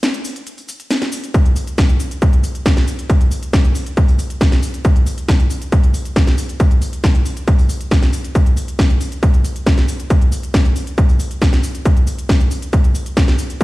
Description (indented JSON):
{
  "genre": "techno",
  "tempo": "137 BPM",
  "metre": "4/4",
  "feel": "straight",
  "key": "none",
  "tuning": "none",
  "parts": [
    { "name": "techno drum kit", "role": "drums", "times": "0.0-13.6 s", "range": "hi-hat, shaker, snare drum", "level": "-23 LUFS", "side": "equal", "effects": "overdrive" },
    { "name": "electronic kick drum", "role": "drums", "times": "1.3-13.6 s", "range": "none", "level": "-12 LUFS", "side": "equal", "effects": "overdrive" }
  ],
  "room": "little or no reverb",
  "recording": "played on a big sound system in a bare room, stone room reverb",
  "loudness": "-13 LUFS",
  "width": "side -19 dB against mid",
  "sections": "0.0-13.6 A section",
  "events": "break 0.0-1.3",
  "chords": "none"
}